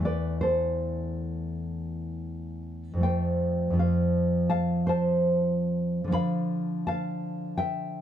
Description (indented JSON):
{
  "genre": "romantic piece for solo classical guitar",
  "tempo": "66-86 BPM",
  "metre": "4/4",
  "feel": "rubato",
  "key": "unclear",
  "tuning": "A4 = 440 Hz",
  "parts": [
    { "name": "nylon-string guitar", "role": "solo", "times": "0.0-8.0 s", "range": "E2 to B5", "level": "-25 LUFS", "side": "equal", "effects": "none" }
  ],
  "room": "light reverb",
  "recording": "dark, warm production",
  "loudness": "-25 LUFS",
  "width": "side -10 dB against mid",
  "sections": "0.0-8.0 A section",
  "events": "none",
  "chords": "0.0 Am/E; 3.0 F; 6.1 Bdim/D"
}